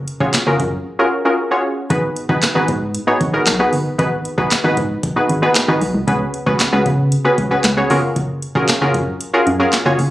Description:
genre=dance-pop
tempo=115 BPM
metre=4/4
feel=straight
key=G# dorian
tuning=A4 = 440 Hz
part: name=glassy wavetable pluck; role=accompaniment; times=0.0-10.1 s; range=B3 to C#5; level=-16 LUFS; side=equal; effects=chorus, sidechain pumping
part: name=organ-like FM bass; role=bass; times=0.0-10.1 s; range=E#1 to C#3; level=-20 LUFS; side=equal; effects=sidechain pumping
part: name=smooth R&B drum kit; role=drums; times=0.1-10.1 s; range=handclaps, hi-hat, kick drum, snare drum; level=-19 LUFS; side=equal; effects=none
room=light reverb, digital ambience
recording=recorded on a phone in the room, club reverb, compression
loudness=-14 LUFS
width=side -15 dB against mid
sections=0.0-1.9 A section; 1.9-10.1 A section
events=drop 0.0-1.9, 1.9-10.1; kick muted 9.2-10.1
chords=0.0 F#maj9; 1.9 G#m7; 6.1 C#7sus4; 7.9 F#maj9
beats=0.34 0.86 1.38 | 1.90 2.42 2.95 3.47 | 3.99 4.51 5.03 5.55 | 6.08 6.60 7.12 7.64 | 8.16 8.69 9.21 9.73

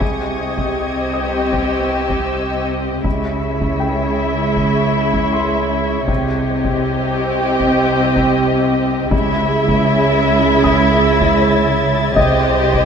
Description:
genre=cinematic, suspense film score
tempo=79 BPM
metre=4/4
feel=straight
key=C phrygian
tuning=A4 = 440 Hz
part: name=muted chamber violin section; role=melody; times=0.0-12.9 s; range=Eb5 to Fb5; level=-23 LUFS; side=left 4 dB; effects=none
part: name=muted chamber violin section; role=second line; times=0.0-12.9 s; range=Fb4 to G4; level=-20 LUFS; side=equal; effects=none
part: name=muted chamber viola section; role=accompaniment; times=0.0-12.9 s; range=Ab3 to C5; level=-23 LUFS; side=right 2 dB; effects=none
part: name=glass harmonica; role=sustained chords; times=0.0-12.9 s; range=C4 to Fb5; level=-23 LUFS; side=left 2 dB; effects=none
part: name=muted studio double bass section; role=bass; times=0.0-12.9 s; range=C2 to Db2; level=-22 LUFS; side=right 3 dB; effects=none
part: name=muted symphonic cello section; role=bass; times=0.0-12.9 s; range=C3 to Db3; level=-22 LUFS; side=right 3 dB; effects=none
part: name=solo taiko drums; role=drums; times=0.0-12.9 s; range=none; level=-24 LUFS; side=left 2 dB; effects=none
part: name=felt-muted upright piano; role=texture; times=0.0-12.9 s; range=Db5 to Eb6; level=-24 LUFS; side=left 3 dB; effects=none
part: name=muted studio violin section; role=texture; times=0.0-12.9 s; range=Db6 to B6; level=-29 LUFS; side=left 4 dB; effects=none
room=moderate concert hall reverb, RT60 1.9 s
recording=minimal, uncompressed stereo recording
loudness=-14 LUFS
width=side -7 dB against mid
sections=0.0-12.9 A section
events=none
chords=0.0 Cm; 3.0 Dbm; 6.1 Cm; 9.1 Dbm; 12.2 Cm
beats=| 0.01 0.77 1.53 2.29 | 3.05 3.81 4.57 5.33 | 6.09 6.85 7.61 8.37 | 9.12 9.88 10.64 11.40 | 12.16

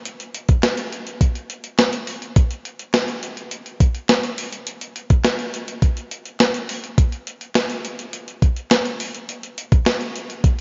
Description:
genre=pop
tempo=104 BPM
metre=4/4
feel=straight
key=none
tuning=none
part: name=clean 12-bit digital drum machine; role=drums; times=0.1-10.6 s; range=hi-hat, kick drum, snare drum, tambourine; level=-21 LUFS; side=equal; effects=none
part: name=group handclap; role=percussion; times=0.6-10.0 s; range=none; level=-39 LUFS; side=equal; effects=slapback echo
room=moderate lush hall reverb, RT60 2.4 s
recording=big arena sound, nothing above 7.5 kHz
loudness=-21 LUFS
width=mono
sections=0.0-10.6 A section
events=none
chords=none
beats=| 0.06 0.63 1.21 1.79 | 2.36 2.94 3.52 4.09 | 4.67 5.25 5.83 6.40 | 6.98 7.56 8.13 8.71 | 9.29 9.86 10.44

